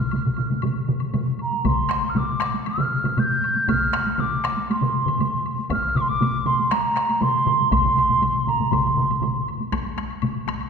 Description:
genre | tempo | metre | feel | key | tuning
japanese traditional, taiko drum ensemble | 119 BPM | 4/4 | straight | C suspended pentatonic | A4 = 440 Hz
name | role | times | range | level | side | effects
mellow hollow wooden piccolo | melody | 0.0-9.5 s | Bb5 to G6 | -22 LUFS | right 2 dB | none
solo taiko drums | percussion | 0.0-9.3 s | none | -28 LUFS | right 3 dB | none
taiko ensemble | percussion | 0.0-10.7 s | none | -29 LUFS | right 1 dB | none
taiko ensemble | percussion | 0.0-10.6 s | none | -27 LUFS | left 3 dB | none
woodblock | percussion | 0.1-10.7 s | none | -38 LUFS | left 6 dB | none
taiko ensemble | percussion | 1.6-10.6 s | none | -30 LUFS | left 1 dB | none
room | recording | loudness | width
wet concert hall reverb, RT60 2.0 s | minimal, uncompressed stereo recording | -19 LUFS | side -6 dB against mid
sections
0.0-9.7 A section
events
none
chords
none

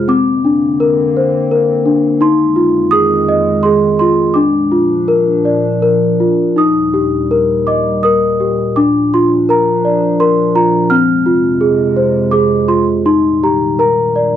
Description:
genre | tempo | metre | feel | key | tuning
children's music, lullaby | 83 BPM | 3/4 | rubato | Eb major | A4 = 440 Hz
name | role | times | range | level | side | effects
celesta | melody | 0.0-14.4 s | C4 to F6 | -11 LUFS | left 1 dB | none
warbly tape-like pad | sustained chords | 0.0-14.4 s | Eb2 to D4 | -18 LUFS | right 2 dB | chorus, built-in reverb
room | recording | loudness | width
little or no reverb | dry, close 1970s-style studio recording | -10 LUFS | side -10 dB against mid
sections
0.0-6.6 A section; 6.6-14.4 B section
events
none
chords
0.1 Bbadd9; 2.2 Fm7; 4.4 Bb; 6.6 Eb; 8.8 Bb; 10.9 Fm; 13.1 Eb/Bb; 13.8 Bb

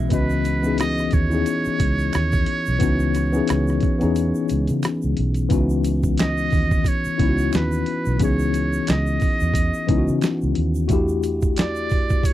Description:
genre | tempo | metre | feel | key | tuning
R&B, neo-soul | 89 BPM | 4/4 | swing 57% on 16ths | C# minor | A4 = 441 Hz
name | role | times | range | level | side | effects
electric guitar at the edge of break-up | second line | 0.0-0.6 s | G#3 to E4 | -34 LUFS | right 6 dB | phaser
tine electric piano | accompaniment | 0.0-12.3 s | E3 to D#5 | -22 LUFS | left 5 dB | auto-pan
vintage muted fingered electric bass | bass | 0.0-12.2 s | B1 to C#3 | -23 LUFS | right 1 dB | none
trumpet with metal mute | melody | 0.1-12.3 s | B4 to D#5 | -27 LUFS | right 4 dB | slapback echo
boom bap sampler-style drum kit | drums | 0.1-12.3 s | hi-hat, kick drum, rim click, snare drum | -22 LUFS | right 1 dB | none
tube shaker and finger snaps | percussion | 0.1-12.3 s | none | -40 LUFS | right 16 dB | none
room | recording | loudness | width
little or no reverb | dry, close 1970s-style studio recording | -18 LUFS | side -13 dB against mid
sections
0.0-5.5 A section; 5.5-12.3 B section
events
break 4.2-5.5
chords
0.0 C#m11; 10.9 Em11

